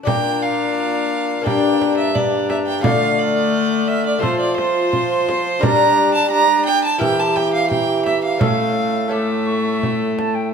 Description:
classical, renaissance-style consort dance; 86 BPM; 4/4; straight; A4 = 442 Hz
lute; accompaniment; 0.0-10.5 s; G2 to D5; -24 LUFS; left 6 dB
silver concert flute; melody; 0.1-10.5 s; G5 to F6; -28 LUFS; right 1 dB
rich violin; second line; 0.1-10.5 s; C5 to Bb5; -20 LUFS; right 4 dB
warm viola; accompaniment; 0.1-10.5 s; A3 to G4; -22 LUFS; left 4 dB
mellow bassoon; bass; 0.1-10.5 s; G2 to G3; -22 LUFS; right 1 dB
frame drum; percussion; 0.1-10.5 s; -23 LUFS; right 2 dB
wet stone room reverb, RT60 1.3 s; -15 LUFS; side -6 dB against mid
0.1-10.5 A section
0.1 Bb; 1.5 Gm; 2.8 Dm; 4.2 F; 5.6 Gm; 7.0 Edim; 8.4 A

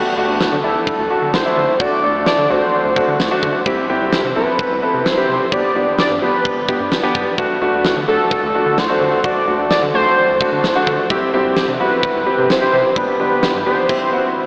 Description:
synth-pop; 129 BPM; 4/4; straight; D mixolydian; A4 = 439 Hz
clear concert grand piano; accompaniment; 0.0-14.4 s; A3 to A4; -17 LUFS; equal; wide subtle chorus
rubbery square bass; bass; 0.0-13.8 s; G1 to D3; -26 LUFS; equal
huge arena drum kit; drums; 0.4-14.0 s; crash cymbal, kick drum, snare drum; -21 LUFS; equal
fat analog lead; melody; 0.6-14.5 s; A4 to D5; -17 LUFS; equal; chorus, tape echo
wet huge ambient reverb, RT60 8.6 s; dreamy mix soaked in reverb, AM radio sound; -13 LUFS; side -35 dB against mid
0.0-14.5 A section
0.0 D; 3.7 C; 5.5 G; 7.4 D; 11.1 C; 13.0 G; 13.9 C

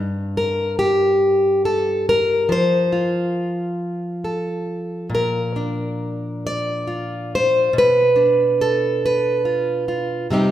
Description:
folk, solo fingerstyle acoustic guitar; 46 BPM (dotted quarters); 6/8; straight; A4 = 440 Hz
fingerpicked plugged-in steel-string acoustic guitar; solo; 0.0-10.5 s; G2 to D5; -17 LUFS; equal
moderate recital hall reverb, RT60 1.7 s; recorded in a church or concert hall; -17 LUFS; side -12 dB against mid
0.0-10.5 A section
0.0 N.C.; 2.5 F; 5.1 Bb; 7.7 Bm7b5

